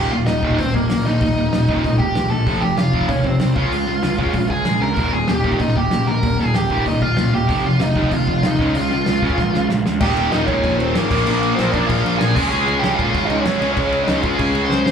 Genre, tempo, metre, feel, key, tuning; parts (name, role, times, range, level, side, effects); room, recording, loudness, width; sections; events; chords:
punk rock; 191 BPM; 4/4; straight; Eb mixolydian; A4 = 440 Hz
smooth overdriven lead guitar; melody; 0.0-14.9 s; Bb3 to C6; -21 LUFS; equal; slapback echo, tape echo
distorted electric guitar; riff; 0.0-14.9 s; Eb2 to Db4; -24 LUFS; left 8 dB; distortion, slapback echo
distorted electric guitar; riff; 0.0-14.9 s; Eb2 to Db4; -22 LUFS; right 7 dB; overdrive, slapback echo
fuzz picked electric bass; bass; 0.0-14.9 s; Eb1 to Db3; -23 LUFS; left 1 dB; overdrive
loose indie drum kit; drums; 0.3-14.9 s; crash cymbal, hi-hat, kick drum, snare drum; -24 LUFS; equal
tight distorted guitar; riff; 10.0-14.9 s; Eb2 to Db4; -24 LUFS; left 1 dB; distortion, slapback echo
little or no reverb; live gig heard through the venue's PA, club reverb; -15 LUFS; side -7 dB against mid
0.0-10.0 A section; 10.0-14.9 B section
drum fill 9.4-10.0, 14.7
0.0 Eb; 2.5 F; 3.6 Db; 5.0 Eb; 7.5 F5; 8.6 Db; 10.0 Eb; 11.1 Bb; 12.4 Db